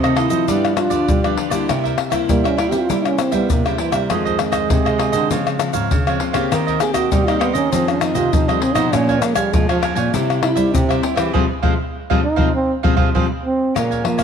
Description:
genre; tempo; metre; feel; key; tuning
samba and choro; 99 BPM; 4/4; straight; F minor; A4 = 443 Hz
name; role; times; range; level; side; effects
breathy trombone; melody; 0.0-14.2 s; Db3 to Ab4; -21 LUFS; right 4 dB; none
cavaquinho; accompaniment; 0.0-14.2 s; Eb4 to Ab5; -24 LUFS; right 12 dB; none
nylon-string guitar; accompaniment; 0.0-14.2 s; F2 to G4; -24 LUFS; left 10 dB; none
nylon-string guitar; bass; 0.0-14.2 s; Ab2 to C4; -22 LUFS; right 2 dB; none
egg shaker, pandeiro, tamborim and surdo; percussion; 0.0-14.2 s; none; -20 LUFS; left 3 dB; none
room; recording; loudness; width
moderate echo chamber reverb, RT60 2.1 s; 1960s-style stereo with parts hard left and right; -15 LUFS; side -7 dB against mid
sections
0.0-13.8 A section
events
trombone solo 0.0-13.8; band accent 11.3-13.8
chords
0.5 G7; 1.7 C7; 4.1 Fm7; 5.3 Dbmaj7; 6.5 Cm7/Eb; 7.7 Fm7; 8.9 Bbm7; 10.1 C; 11.3 Fmadd9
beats
0.48 1.09 | 1.69 2.29 2.90 3.50 | 4.11 4.71 5.31 5.92 | 6.52 7.12 7.73 8.33 | 8.93 9.54 10.14 10.74 | 11.35 11.95 12.55 13.16 | 13.76

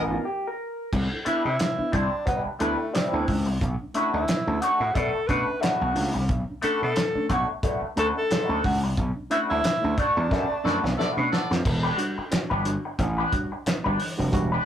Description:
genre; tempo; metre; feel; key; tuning
funk; 90 BPM; 4/4; swing 56% on 16ths; E dorian; A4 = 441 Hz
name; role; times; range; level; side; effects
clear horn section; second line; 0.0, 10.6-11.5 s; B3 to D5; -32 LUFS; equal; none
electric guitar through a small old amp; accompaniment; 0.0-14.7 s; G3 to C#5; -28 LUFS; left 2 dB; wah
reed electric piano; stabs; 0.0-14.5 s; B2 to F#4; -32 LUFS; right 1 dB; overdrive
gritty slap bass; bass; 0.0-14.6 s; E1 to C3; -27 LUFS; equal; overdrive
cloth-damped thuddy drum kit; drums; 0.9-14.5 s; crash cymbal, handclaps, hi-hat, kick drum, snare drum; -28 LUFS; equal; none
breathy tenor saxophone; melody; 1.3-11.3 s; A3 to B4; -27 LUFS; equal; none
room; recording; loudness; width
wet small room ambience, RT60 0.5 s; rough rehearsal-room recording; -22 LUFS; side -10 dB against mid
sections
0.9-11.7 A section; 11.7-14.7 B section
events
break 0.3-0.9; band accent 9.0-11.7; drum fill 10.3-11.7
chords
0.0 G7alt; 0.9 Cmaj9; 3.6 Bm7; 11.7 Em7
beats
0.26 | 0.93 1.60 2.27 2.94 | 3.61 4.28 4.95 5.62 | 6.29 6.96 7.63 8.30 | 8.97 9.64 10.31 10.98 | 11.65 12.32 12.99 13.66 | 14.33

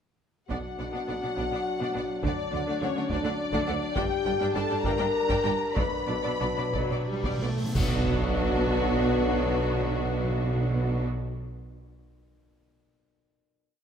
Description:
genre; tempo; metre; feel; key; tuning
cinematic, epic orchestral film score; 59-70 BPM (dotted quarters); 6/8; straight; B minor; A4 = 440 Hz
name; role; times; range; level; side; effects
clear symphonic violin section; melody; 0.5-11.0 s; F#4 to B5; -34 LUFS; left 4 dB; none
clear symphonic violin section; second line; 0.5-11.1 s; D4 to G5; -37 LUFS; left 2 dB; none
clear symphonic viola section; accompaniment; 0.5-11.0 s; F#3 to D4; -34 LUFS; right 2 dB; none
bright trombone section; sustained chords; 0.5-11.1 s; F#3 to D4; -35 LUFS; right 3 dB; none
mellow French horn section; sustained chords; 0.5-11.0 s; C#4 to B4; -32 LUFS; left 5 dB; none
clear symphonic cello section; bass; 0.5-11.0 s; G2 to D3; -36 LUFS; right 3 dB; none
rich studio double bass section; bass; 0.5-11.0 s; G1 to D2; -36 LUFS; right 2 dB; none
warm tuba; bass; 0.5-11.1 s; G1 to D2; -36 LUFS; right 4 dB; none
taiko ensemble; drums; 0.5-7.9 s; none; -34 LUFS; equal; none
cymbal swell, clash cymbals and concert bass drum; percussion; 4.0-9.1 s; none; -34 LUFS; equal; none
timpani; percussion; 5.8-11.0 s; B2; -32 LUFS; equal; none
cymbal swell and impact; sound effects; 7.1-9.8 s; none; -40 LUFS; equal; none
room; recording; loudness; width
wet scoring stage reverb, RT60 1.8 s; none; -25 LUFS; side -8 dB against mid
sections
0.5-7.8 theme; 7.8-11.8 final chord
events
slowing down 3.1-7.8; timpani fill 5.8-7.8; cymbal swell 7.1-7.8; band accent 7.8-8.4; impact 7.8-9.8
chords
0.5 Bm; 2.2 D; 4.0 Gm; 5.8 Bm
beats
| 0.50 1.38 | 2.24 3.11 | 3.97 4.85 | 5.77 6.74 | 7.75 8.78 | 9.80 10.82

